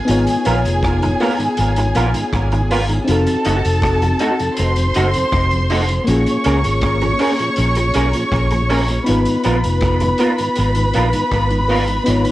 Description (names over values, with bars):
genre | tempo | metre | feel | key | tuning
lovers rock reggae | 80 BPM | 4/4 | straight | G# dorian | A4 = 441 Hz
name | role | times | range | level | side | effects
warm studio violin section | second line | 0.0-12.3 s | G#4 to C#6 | -21 LUFS | equal | none
mellow FM electric piano | accompaniment | 0.0-12.3 s | A#3 to C#5 | -21 LUFS | left 2 dB | chorus
vintage muted fingered electric bass | bass | 0.1-12.2 s | E#1 to C#2 | -18 LUFS | equal | none
vintage drum kit | drums | 0.1-12.3 s | hi-hat, kick drum, rim click | -26 LUFS | equal | cassette tape
mellow tonewheel organ | accompaniment | 0.3-12.3 s | F2 to G#4 | -24 LUFS | right 2 dB | slow rotary speaker
electric guitar through a small old amp | stabs | 0.5-11.8 s | B3 to A#4 | -23 LUFS | right 2 dB | ensemble chorus, tape echo
room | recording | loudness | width
light reverb | home recording on cassette | -14 LUFS | side -15 dB against mid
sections
0.0-12.3 A section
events
none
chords
0.0 G#m69; 3.1 F7b9; 6.1 A#m7; 9.1 G#m69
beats
| 0.07 0.82 1.57 2.32 | 3.07 3.82 4.57 5.32 | 6.07 6.82 7.57 8.32 | 9.07 9.82 10.57 11.32 | 12.07